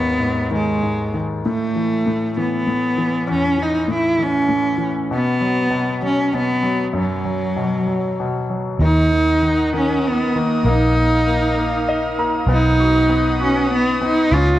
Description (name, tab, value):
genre	six-eight pop ballad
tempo	65 BPM (dotted quarters)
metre	6/8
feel	straight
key	unclear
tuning	A4 = 445 Hz
part	warm cello	melody	0.0-14.6 s	F#3 to E#4	-18 LUFS	equal	none
part	clear concert grand piano	accompaniment	0.0-14.6 s	D#2 to A#5	-23 LUFS	left 2 dB	none
part	airy breathy pad	sustained chords	8.8-14.6 s	D#4 to D#6	-24 LUFS	equal	chorus
part	vintage muted fingered electric bass	bass	8.8-14.6 s	A#1 to D#2	-20 LUFS	right 1 dB	none
room	moderate plate reverb, RT60 2.7 s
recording	worn, warbling old tape, cassette tape, warbly pitch drift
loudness	-16 LUFS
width	side -14 dB against mid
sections	0.0-8.8 A section; 8.8-14.6 B section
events	grand piano fill 11.6-12.5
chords	0.0 G#m; 1.4 Aadd9; 5.1 B5; 8.8 D#m; 10.6 A#sus4; 12.5 B